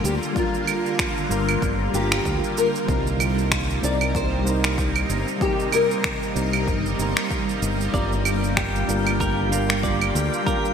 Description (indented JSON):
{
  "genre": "sunset chillout",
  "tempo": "95 BPM",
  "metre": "4/4",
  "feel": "swing 57% on 16ths",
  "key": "G minor",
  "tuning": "A4 = 440 Hz",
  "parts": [
    { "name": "nylon-string guitar", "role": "melody", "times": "0.0-6.6 s", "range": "F4 to D5", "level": "-27 LUFS", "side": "left 2 dB", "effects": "ensemble chorus, digital delay" },
    { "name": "soft electric-piano-like synth keys", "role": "accompaniment", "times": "0.0-10.7 s", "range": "G3 to Bb4", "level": "-27 LUFS", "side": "moving between left 3 dB and right 3 dB", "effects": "chorus, auto-pan, digital delay" },
    { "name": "shimmering ambient pad", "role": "sustained chords", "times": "0.0-10.7 s", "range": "C3 to F4", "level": "-27 LUFS", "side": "equal", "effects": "chorus, built-in reverb, phaser" },
    { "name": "modern bright fingered electric bass", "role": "bass", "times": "0.0-10.3 s", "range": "G1 to D2", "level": "-25 LUFS", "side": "equal", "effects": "none" },
    { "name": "electronic shaker, claves and finger snaps", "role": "drums", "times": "0.1-10.7 s", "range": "none", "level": "-27 LUFS", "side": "right 2 dB", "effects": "overdrive, studio reverb, gated reverb" },
    { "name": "electronic kick drum", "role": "drums", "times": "0.4-10.6 s", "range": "none", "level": "-29 LUFS", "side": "equal", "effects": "overdrive, studio reverb" },
    { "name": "clean electric guitar", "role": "arpeggios", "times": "7.9-10.7 s", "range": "F4 to D5", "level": "-30 LUFS", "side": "right 2 dB", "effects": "digital delay" },
    { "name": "drifting glass-harmonics texture", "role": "texture", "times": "8.4-10.7 s", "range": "G4 to G5", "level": "-31 LUFS", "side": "equal", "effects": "chorus, built-in reverb" }
  ],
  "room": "moderate lush hall reverb, RT60 2.5 s",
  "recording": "bright 1980s-style digital production",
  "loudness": "-20 LUFS",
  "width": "side -7 dB against mid",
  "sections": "0.0-10.7 A section",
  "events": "none",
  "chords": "0.0 Gm7; 2.9 Cm7; 7.9 Gm7"
}